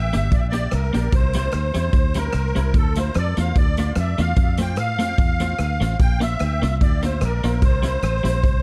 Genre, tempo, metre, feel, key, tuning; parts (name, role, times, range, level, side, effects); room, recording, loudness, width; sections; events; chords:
ska; 148 BPM; 4/4; swing 54% on 8ths; F major; A4 = 445 Hz
musette accordion; melody; 0.0-8.6 s; A4 to G5; -29 LUFS; equal; dub echo
fingered electric bass; bass; 0.0-8.6 s; G1 to A2; -24 LUFS; equal
clean electric guitar; accompaniment; 0.1-8.5 s; G3 to G4; -30 LUFS; equal; tremolo, dub echo
swinging big-band drum kit; drums; 0.1-8.5 s; hi-hat, kick drum, rim click; -24 LUFS; equal
little or no reverb; vinyl crackle; -20 LUFS; mono
0.0-8.6 A section
0.0 Gm; 1.1 C; 2.7 Dm; 4.4 F; 6.0 Bb; 7.6 C